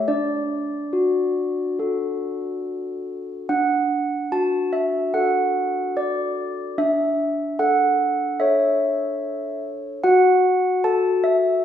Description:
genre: classical, tune for handbells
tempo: 72 BPM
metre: 4/4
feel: uneven beats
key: D major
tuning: A4 = 438 Hz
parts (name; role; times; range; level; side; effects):
- handbells; solo; 0.0-11.6 s; D4 to A5; -19 LUFS; equal; none
room: wet recital hall reverb, RT60 1.6 s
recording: heard from further back in the room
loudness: -19 LUFS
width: side -9 dB against mid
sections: 0.0-3.5 A section; 3.5-11.6 B section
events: none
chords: 0.1 D; 6.8 A/D; 10.0 D/F# (rootless)

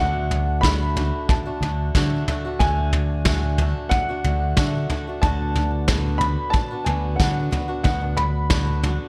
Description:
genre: indie folk with a building arrangement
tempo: 91 BPM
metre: 4/4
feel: straight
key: unclear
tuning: A4 = 438 Hz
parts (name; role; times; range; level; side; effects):
- dark upright piano; melody; 0.0-8.8 s; F#5 to B5; -29 LUFS; equal; digital delay
- picked swing-style acoustic guitar; accompaniment; 0.0-9.1 s; D3 to F#4; -32 LUFS; equal; none
- picked electric bass; bass; 0.0-9.0 s; D2 to D3; -25 LUFS; equal; none
- soft brush drum kit; drums; 0.3-9.0 s; kick drum, snare drum, toms; -26 LUFS; equal; none
room: studio ambience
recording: dark, warm production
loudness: -22 LUFS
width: mono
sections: 0.0-9.1 A section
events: none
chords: 0.0 D; 5.2 Bm/D

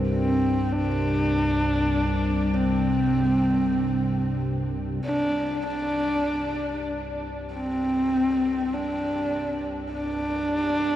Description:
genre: dark ambient drone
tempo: 49 BPM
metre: 4/4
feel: straight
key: unclear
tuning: A4 = 439 Hz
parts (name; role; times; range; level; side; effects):
- dark analog pad; sustained chords; 0.0-5.1 s; C3 to C5; -38 LUFS; equal; none
- analog drone; drone; 0.0-11.0 s; C2 to G2; -27 LUFS; equal; chorus
- bronze singing bowl; texture; 0.0-5.1 s; C5; -44 LUFS; equal; none
- warm horsehead fiddle; melody; 0.1-11.0 s; C4 to D4; -24 LUFS; equal; ping-pong delay
room: wet huge ambient reverb, RT60 7.7 s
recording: worn, warbling old tape, cassette tape, warbly pitch drift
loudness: -22 LUFS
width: side -12 dB against mid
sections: 0.0-5.1 A section; 5.1-11.0 B section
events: none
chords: 0.0 C7sus2; 5.1 Csus2

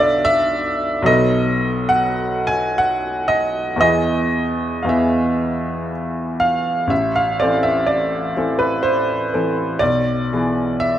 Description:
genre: classical, romantic nocturne for solo piano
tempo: 55-76 BPM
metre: 3/4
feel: rubato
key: A minor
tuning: A4 = 444 Hz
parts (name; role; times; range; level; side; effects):
- warm upright piano; solo; 0.0-11.0 s; A1 to G#5; -16 LUFS; equal; none
room: moderate concert hall reverb, RT60 2.0 s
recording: close, detailed microphones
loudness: -16 LUFS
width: side -11 dB against mid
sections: 0.0-6.9 A section; 6.9-11.0 B section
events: none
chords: 0.0 Bm7b5; 1.1 B7; 3.8 E; 6.9 Am; 9.8 E7/B

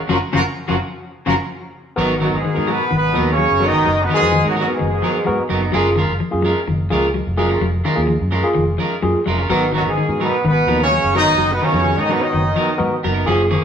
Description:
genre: afrobeat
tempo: 128 BPM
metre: 4/4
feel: straight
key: G# dorian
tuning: A4 = 439 Hz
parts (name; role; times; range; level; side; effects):
- warm horn section; melody; 0.0-5.5, 9.8-13.0 s; F#3 to D#5; -19 LUFS; equal; none
- clean electric guitar; arpeggios; 0.1-13.6 s; C#3 to F#3; -23 LUFS; left 4 dB; spring reverb
- clean electric guitar; stabs; 0.1-13.6 s; E#3 to A#4; -22 LUFS; right 3 dB; none
- fingered electric bass; bass; 0.1-13.6 s; E#1 to G#2; -22 LUFS; equal; none
- barky tine electric piano; accompaniment; 2.0-13.5 s; A#3 to C#5; -22 LUFS; equal; none
- brilliant trombone section; second line; 2.2-5.5, 9.7-13.0 s; F#2 to D#3; -26 LUFS; right 1 dB; none
- clear trumpet; second line; 2.2-5.5, 9.8-13.0 s; F#3 to D#4; -26 LUFS; right 1 dB; none
room: wet stone room reverb, RT60 1.1 s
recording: band playing live in one room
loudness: -15 LUFS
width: side -8 dB against mid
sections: 0.0-2.0 A section; 2.0-13.6 B section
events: band accent 0.1-2.0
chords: 0.0 F#maj7; 2.0 G#m9; 5.7 F#maj9; 9.5 G#m9

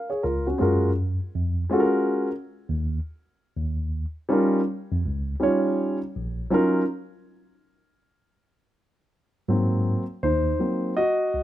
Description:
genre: hip hop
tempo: 81 BPM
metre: 4/4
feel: swing 64% on 16ths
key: Eb minor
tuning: A4 = 440 Hz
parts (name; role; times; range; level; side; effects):
- dark grand piano; accompaniment; 0.0-11.4 s; Gb3 to Eb5; -22 LUFS; equal; plate reverb
- mellow tine electric piano; bass; 0.2-11.4 s; Bb1 to Ab2; -25 LUFS; equal; medium stereo tremolo
room: moderate small room reverb, RT60 0.6 s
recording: rough home demo mix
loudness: -22 LUFS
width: side -13 dB against mid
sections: 0.0-9.5 A section; 9.5-11.4 B section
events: break 6.5-9.5; grand piano solo 9.5-11.4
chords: 0.0 Ebm11 (rootless); 0.6 Gbmaj9; 3.6 Eb9; 6.5 Ebm9; 9.5 Ab9

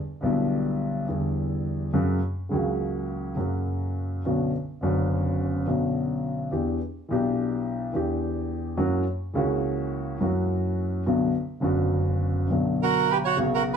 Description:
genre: tango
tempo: 105 BPM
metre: 4/4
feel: rubato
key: B harmonic minor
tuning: A4 = 439 Hz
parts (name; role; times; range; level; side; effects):
- dark baby grand piano; accompaniment; 0.2-13.8 s; F#1 to G4; -24 LUFS; equal; none
- bandoneon; melody; 12.8-13.8 s; F#4 to C#5; -22 LUFS; right 8 dB; none
room: wet studio reverb, RT60 0.7 s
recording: band playing live in one room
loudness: -24 LUFS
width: side -7 dB against mid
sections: 0.0-13.4 A section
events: none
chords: 0.0 Em7; 1.9 F#; 4.3 Bmadd9; 6.5 Em7; 8.8 F#7; 11.1 Bm

